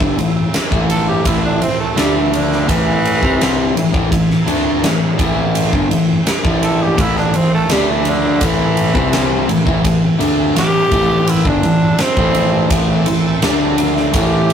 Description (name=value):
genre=classic rock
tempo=84 BPM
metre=4/4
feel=straight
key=A minor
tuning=A4 = 440 Hz
part: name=raspy tenor saxophone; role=melody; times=0.0-14.5 s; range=D3 to A4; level=-19 LUFS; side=right 2 dB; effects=none
part: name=bright tonewheel organ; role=sustained chords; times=0.0-14.5 s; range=E3 to Bb4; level=-30 LUFS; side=right 2 dB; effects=none
part: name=crunchy overdriven guitar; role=riff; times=0.0-14.5 s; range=G2 to D4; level=-23 LUFS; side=right 6 dB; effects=none
part: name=overdriven semi-hollow guitar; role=riff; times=0.0-14.5 s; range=G2 to D4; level=-16 LUFS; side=left 2 dB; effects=none
part: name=fingered electric bass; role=bass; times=0.0-14.5 s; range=G1 to D2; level=-24 LUFS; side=right 1 dB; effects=none
part: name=huge arena drum kit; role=drums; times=0.0-14.5 s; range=kick drum, ride cymbal, snare drum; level=-18 LUFS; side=equal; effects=none
room=moderate studio reverb, RT60 0.6 s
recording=rough rehearsal-room recording, tube saturation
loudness=-12 LUFS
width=side -8 dB against mid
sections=0.0-14.5 A section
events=tenor saxophone solo 0.0-14.5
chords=0.0 Am; 2.0 D5; 2.7 Am; 7.7 D5; 8.4 Am; 13.4 D5